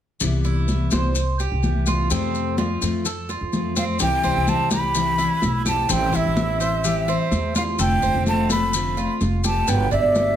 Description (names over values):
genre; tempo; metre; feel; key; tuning
latin, Cuban son and guajira; 127 BPM; 4/4; straight; C major; A4 = 441 Hz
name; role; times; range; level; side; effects
picked steel-string acoustic guitar; accompaniment; 0.2-10.4 s; B2 to G4; -25 LUFS; left 5 dB; none
upright bass; bass; 0.2-10.4 s; F1 to F2; -24 LUFS; equal; none
congas; percussion; 0.2-10.4 s; none; -27 LUFS; left 1 dB; none
maracas; percussion; 0.2-10.4 s; none; -29 LUFS; left 6 dB; none
Cuban tres; arpeggios; 0.4-10.4 s; B3 to C5; -26 LUFS; right 4 dB; none
breathy mellow silver concert flute; melody; 3.8-10.4 s; E5 to B5; -23 LUFS; right 2 dB; none
room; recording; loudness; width
light reverb; none; -19 LUFS; side -10 dB against mid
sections
0.2-4.0 A section; 4.0-10.4 B section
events
none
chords
0.2 Cmaj7; 2.1 F; 4.0 C; 5.9 Am7; 7.8 F6; 9.7 G